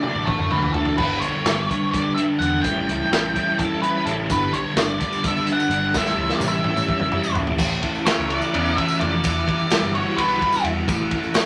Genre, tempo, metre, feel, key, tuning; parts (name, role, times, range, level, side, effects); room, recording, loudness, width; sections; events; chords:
psychedelic rock; 255 BPM (eighths); 7/8; straight; A4 = 442 Hz
octave-fuzz lead guitar; melody; 0.0-11.5 s; A4 to G5; -26 LUFS; equal; distortion
phased string machine; sustained chords; 0.0-11.5 s; C#3 to A5; -36 LUFS; equal; ensemble chorus, phaser
crunchy overdriven guitar; riff; 0.0-11.5 s; G2 to F#4; -26 LUFS; equal; rotary speaker
crunchy breakbeat drum kit; drums; 0.0-11.5 s; crash cymbal, hi-hat, kick drum, ride cymbal, snare drum, toms; -26 LUFS; equal
overdriven picked electric bass; bass; 0.2-11.1 s; E1 to F#2; -31 LUFS; equal
tambourine; percussion; 4.3-11.4 s; -40 LUFS; equal
moderate studio reverb, RT60 0.6 s; -21 LUFS; mono
1.0-7.6 A section; 7.6-11.5 B section
drum fill 0.0-1.0, 6.0-7.6
0.0 Dadd9; 1.0 Gadd9; 2.6 A7; 4.3 Gadd9; 6.0 A7; 7.6 A; 9.2 Emadd9; 10.9 A